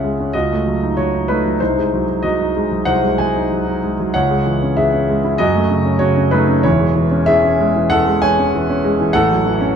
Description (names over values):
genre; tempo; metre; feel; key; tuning
classical, romantic character piece for solo piano; 95 BPM; 4/4; rubato; C# minor; A4 = 440 Hz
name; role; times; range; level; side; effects
warm grand piano; solo; 0.0-9.8 s; E1 to G#5; -14 LUFS; equal; none
room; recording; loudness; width
moderate recital hall reverb, RT60 1.7 s; dark, warm production; -14 LUFS; side -7 dB against mid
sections
0.0-9.8 A section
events
none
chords
0.3 D#m7b5/C#; 1.6 G#7/B#; 4.1 C#m; 5.4 F#m; 6.6 C#m/E; 9.1 F#m7/A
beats
0.33 0.97 | 1.59 2.23 2.87 3.50 | 4.14 4.77 5.39 6.01 | 6.64 7.27 7.90 8.52 | 9.13 9.74